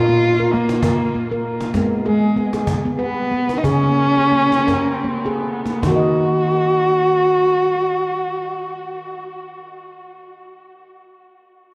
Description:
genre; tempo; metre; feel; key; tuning
world meditative, meditative tuned percussion; 74-98 BPM; 3/4; swing 56% on 16ths; Eb minor; A4 = 442 Hz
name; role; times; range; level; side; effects
dark cello; melody; 0.0-9.3 s; Ab3 to Gb4; -20 LUFS; equal; tape echo
handpan; arpeggios; 0.0-9.4 s; Bb2 to Eb5; -23 LUFS; equal; tape echo
cajon; percussion; 0.1-6.2 s; none; -29 LUFS; equal; none
room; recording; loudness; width
wet echo chamber reverb, RT60 2.4 s; worn, warbling old tape, cassette tape, warbly pitch drift; -18 LUFS; mono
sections
0.0-5.8 A section; 5.8-10.7 B section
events
slowing down 1.7-5.8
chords
0.0 Bb5; 1.7 Abm; 3.6 Db5; 5.8 Ebm

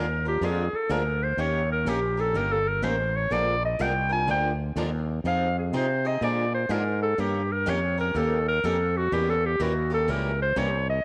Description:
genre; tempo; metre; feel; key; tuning
acoustic string swing (jazz manouche); 124 BPM; 4/4; swing 65% on 8ths; Bb major; A4 = 443 Hz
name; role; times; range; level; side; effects
clear clarinet; melody; 0.0-11.0 s; Gb4 to Ab5; -28 LUFS; equal; none
picked swing-style acoustic guitar; accompaniment; 0.0-10.7 s; Eb3 to Bb4; -36 LUFS; equal; none
picked swing-style acoustic guitar; accompaniment; 0.0-10.7 s; D3 to Bb4; -38 LUFS; equal; none
fretless electric bass; bass; 0.0-11.0 s; G1 to C3; -30 LUFS; equal; none
room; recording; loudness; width
moderate echo chamber reverb, RT60 1.6 s, studio reverb; none; -26 LUFS; mono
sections
0.0-11.0 A section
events
clarinet solo 0.0-11.0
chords
0.0 Bb7; 1.4 Eb7; 3.3 Bb7; 5.2 Fm7; 6.2 Bb7; 7.2 Eb7; 9.1 Edim7

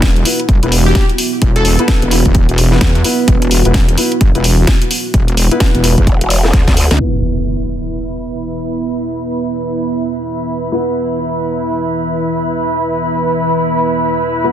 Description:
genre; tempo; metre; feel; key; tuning
bass house; 129 BPM; 4/4; swing 61% on 16ths; unclear; A4 = 436 Hz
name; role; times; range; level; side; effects
dark analog pad; sustained chords; 0.0-14.5 s; E3 to E5; -20 LUFS; right 1 dB; chorus, vintage 12-bit sampler grit, sidechain pumping
wobble bass; bass; 0.0-7.0 s; E1 to E2; -13 LUFS; equal; chorus, overdrive, sidechain pumping
electronic kick drum; drums; 0.0-6.7 s; none; -12 LUFS; equal; small room ambience
garage drum kit; drums; 0.0-7.0 s; hi-hat, snare drum; -17 LUFS; equal; small room ambience
dark grand piano; stabs; 0.3-14.5 s; B3 to B4; -21 LUFS; left 1 dB; sidechain pumping, tape echo
plucky unison lead; melody; 0.9-2.0 s; G4 to A4; -21 LUFS; left 2 dB; lush chorus, cassette tape, tape echo
growl bass; bass; 6.1-6.9 s; E1 to D2; -13 LUFS; equal; chorus, overdrive, sidechain pumping
impact; sound effects; 7.0-8.9 s; none; -19 LUFS; equal; none
dark studio string section; texture; 7.0-14.5 s; E4 to B5; -18 LUFS; right 1 dB; sidechain pumping
room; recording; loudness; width
light reverb, digital ambience; dense, heavily limited modern master, low-pass filter; -11 LUFS; side -11 dB against mid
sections
0.0-7.0 A section; 7.0-14.5 B section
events
drop 0.0-7.0; drum fill 6.5-7.0; impact 7.0-8.9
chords
0.0 E5

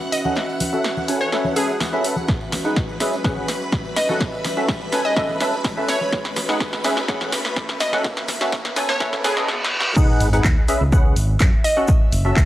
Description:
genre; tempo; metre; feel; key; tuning
piano house; 125 BPM; 4/4; straight; B mixolydian; A4 = 441 Hz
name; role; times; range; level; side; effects
string machine, violins; sustained chords; 0.0-10.0 s; B4 to F#6; -30 LUFS; equal; ensemble chorus, sidechain pumping
tambourine and congas; percussion; 0.0-9.5 s; none; -33 LUFS; left 1 dB; none
riser, reverse cymbal and sub drop; sound effects; 0.1-11.9 s; none; -31 LUFS; equal; none
airy breathy pad; texture; 0.0-12.5 s; G#3 to E5; -32 LUFS; equal; chorus, sidechain pumping
glassy wavetable pluck; melody; 0.1-11.8 s; G#4 to D#5; -24 LUFS; equal; chorus, tape echo
house drum kit; drums; 0.1-12.5 s; crash cymbal, handclaps, hi-hat, snare drum; -26 LUFS; equal; high-pass filter on snare, high-pass filter on hats, high-pass filter on cymbals
percussive organ stab; riff; 0.2-12.4 s; C#4 to G#5; -23 LUFS; equal; ensemble chorus, sidechain pumping, tape echo
electronic kick drum; drums; 2.3-12.5 s; none; -19 LUFS; equal; none
vintage drum kit; drums; 10.0-12.5 s; hi-hat, shaker, snare drum; -34 LUFS; equal; sidechain pumping on hats, high-pass filter on hats, high-pass filter on snare, sidechain pumping on perc, high-pass filter on perc, high-pass filter on room
fingered electric bass; bass; 10.2-12.5 s; F#1 to F#2; -19 LUFS; equal; sidechain pumping
room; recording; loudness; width
light reverb, small room ambience; dry, gritty hardware recording, cassette tape, high-pass filter; -18 LUFS; side -14 dB against mid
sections
0.0-10.0 A section; 10.0-12.5 B section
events
build-up 0.0-10.0; drum fill 0.0-9.5, 9.5-10.0; filter sweep on synth stab 0.0-10.0; filter sweep 0.0-10.0; riser 0.1-9.5; reverse cymbal 9.0-10.0; drop 10.0-12.5; impact 10.0-11.9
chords
0.1 F#m7; 1.1 B9sus4; 2.3 G#m7; 3.0 C#m7; 4.0 F#m7; 4.9 B9sus4; 6.1 G#m7; 6.8 C#m7; 7.8 F#m7; 8.8 B9sus4; 10.0 G#m7; 10.7 C#m7; 11.6 F#m7

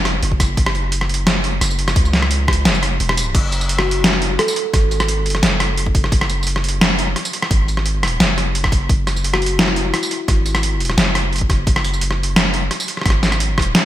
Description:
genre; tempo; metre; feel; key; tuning
half-time drum and bass; 173 BPM; 4/4; half-time; F# minor; A4 = 440 Hz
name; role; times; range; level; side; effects
long sustained 808-style bass; bass; 0.0-13.7 s; E1 to C#2; -20 LUFS; equal; tube saturation
boom bap sampler-style drum kit; drums; 0.1-13.8 s; crash cymbal, hi-hat, rim click, snare drum, tambourine; -17 LUFS; equal; overdrive, studio reverb, gated reverb
electronic kick drum; drums; 0.3-13.7 s; none; -17 LUFS; equal; studio reverb
kalimba; melody; 3.8-4.7, 9.3-9.9 s; E4 to A4; -24 LUFS; left 1 dB; vintage 12-bit sampler grit, ping-pong delay
room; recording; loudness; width
light reverb, digital ambience; bright 1980s-style digital production; -15 LUFS; side -13 dB against mid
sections
0.0-3.3 A section; 3.3-13.8 A section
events
drop 0.0-3.3, 3.3-13.8; break 3.0-3.3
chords
0.0 F#5

